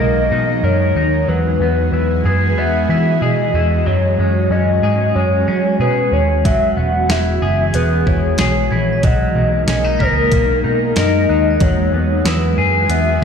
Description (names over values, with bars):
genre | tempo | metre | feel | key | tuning
dream pop | 93 BPM | 4/4 | straight | E lydian | A4 = 439 Hz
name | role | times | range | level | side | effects
warbly nostalgic lead | melody | 0.0-13.2 s | A#4 to F#5 | -19 LUFS | left 2 dB | chorus, ping-pong delay
ethereal airy pad | sustained chords | 0.0-13.2 s | E3 to G#4 | -20 LUFS | right 1 dB | ensemble chorus, built-in reverb
electric guitar at the edge of break-up | arpeggios | 0.0-13.2 s | F#3 to A#4 | -21 LUFS | left 2 dB | lush chorus, ping-pong delay
vintage muted picked electric bass | bass | 0.0-13.2 s | E1 to F#3 | -18 LUFS | equal | none
glockenspiel with soft plastic mallets | texture | 0.0-4.2, 8.7-13.2 s | D#6 to B6 | -30 LUFS | right 3 dB | ping-pong delay
crisp 8-bit digital drum machine | drums | 6.5-13.0 s | hi-hat, kick drum, snare drum | -18 LUFS | equal | none
room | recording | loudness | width
light reverb, digital ambience | played on a big sound system in a bare room, stone room reverb | -13 LUFS | side -7 dB against mid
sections
0.0-13.2 A section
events
none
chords
0.0 Bmaj7; 1.3 Eadd9; 3.9 F#sus2; 6.4 Eadd9; 9.0 Bmaj7; 11.6 Eadd9